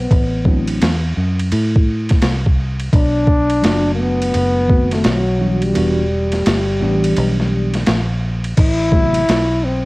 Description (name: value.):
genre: hip hop, jazz-hop.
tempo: 85 BPM.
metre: 4/4.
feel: swing 62% on 16ths.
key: A dorian.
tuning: A4 = 437 Hz.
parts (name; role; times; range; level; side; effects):
breathy trombone; melody; 0.0-9.9 s; F#3 to E4; -18 LUFS; left 1 dB; cassette tape.
fingered electric bass; bass; 0.0-9.9 s; E1 to A2; -19 LUFS; equal; none.
boom bap sampler-style drum kit; drums; 0.1-9.5 s; crash cymbal, hi-hat, kick drum, ride cymbal, snare drum; -18 LUFS; equal; overdrive, cassette tape.
tine electric piano; accompaniment; 0.4-9.2 s; C3 to G4; -20 LUFS; equal; overdrive, fast stereo tremolo, cassette tape.
room: little or no reverb.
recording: home recording on cassette, vinyl crackle.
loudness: -13 LUFS.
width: side -22 dB against mid.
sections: 0.0-8.6 A section; 8.6-9.9 A section.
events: kick muted 5.8-8.6.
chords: 0.1 D7/A; 2.9 Bm7; 5.0 B7b9; 5.8 Em7; 8.6 Am69.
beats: | 0.11 0.81 1.52 2.23 | 2.93 3.64 4.34 5.05 | 5.75 6.46 7.17 7.87 | 8.58 9.29.